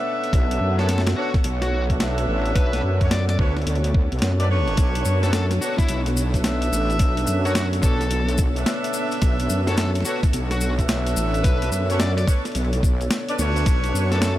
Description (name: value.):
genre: glitch hop.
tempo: 108 BPM.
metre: 4/4.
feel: swing 64% on 16ths.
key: B minor.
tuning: A4 = 442 Hz.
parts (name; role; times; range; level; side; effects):
dark analog pad; sustained chords; 0.0-14.4 s; B3 to F#5; -29 LUFS; right 1 dB; chorus, sidechain pumping.
warm horn section; stabs; 0.0-14.2 s; D4 to E5; -27 LUFS; equal; sidechain pumping, tape echo.
boom bap sampler-style drum kit; drums; 0.2-14.4 s; hi-hat, snare drum; -29 LUFS; equal; studio reverb.
wobble bass; bass; 0.3-14.4 s; A1 to F#2; -22 LUFS; equal; chorus.
electronic kick drum; drums; 0.3-13.8 s; none; -19 LUFS; equal; studio reverb.
smooth overdriven lead guitar; melody; 0.8-14.3 s; E4 to D5; -32 LUFS; left 1 dB; tape echo.
maracas; percussion; 4.8-14.4 s; none; -35 LUFS; left 4 dB; none.
room: light reverb, digital ambience.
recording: none.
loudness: -19 LUFS.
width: side -14 dB against mid.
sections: 0.0-14.4 A section.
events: none.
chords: 0.0 Bm9.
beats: | 0.33 0.89 1.44 2.00 | 2.55 3.11 3.67 4.22 | 4.78 5.33 5.89 6.44 | 7.00 7.55 8.11 8.67 | 9.22 9.78 10.33 10.89 | 11.44 12.00 12.55 13.11 | 13.67 14.22.